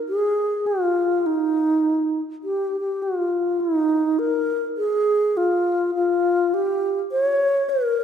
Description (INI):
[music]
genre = hawaiian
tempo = 102 BPM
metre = 4/4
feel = swing 62% on 8ths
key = unclear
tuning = A4 = 440 Hz
[part]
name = wooden-headed alto flute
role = solo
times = 0.1-8.0 s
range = Eb4 to Db5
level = -19 LUFS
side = equal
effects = none
[sound]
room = wet concert hall reverb, RT60 2.2 s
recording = minimal, uncompressed stereo recording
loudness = -19 LUFS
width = side -8 dB against mid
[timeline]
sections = 0.0-8.0 A section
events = none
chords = none